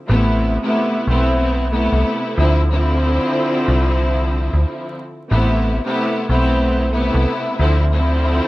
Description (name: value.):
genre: hip hop.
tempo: 92 BPM.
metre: 4/4.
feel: swing 61% on 16ths.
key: A minor.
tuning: A4 = 440 Hz.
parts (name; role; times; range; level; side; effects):
rich studio string section; accompaniment; 0.1-8.5 s; C3 to E4; -18 LUFS; equal; high-pass filter, low-pass filter.
metallic FM bass; bass; 0.1-8.4 s; A1 to D2; -17 LUFS; equal; none.
room: light reverb, studio ambience.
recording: worn, warbling old tape, cassette tape, vinyl crackle, warbly pitch drift.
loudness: -15 LUFS.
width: side -18 dB against mid.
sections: 0.0-8.5 A section.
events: none.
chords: 0.1 Amadd9; 2.4 Dm9; 5.3 Amadd9; 7.6 Dm9.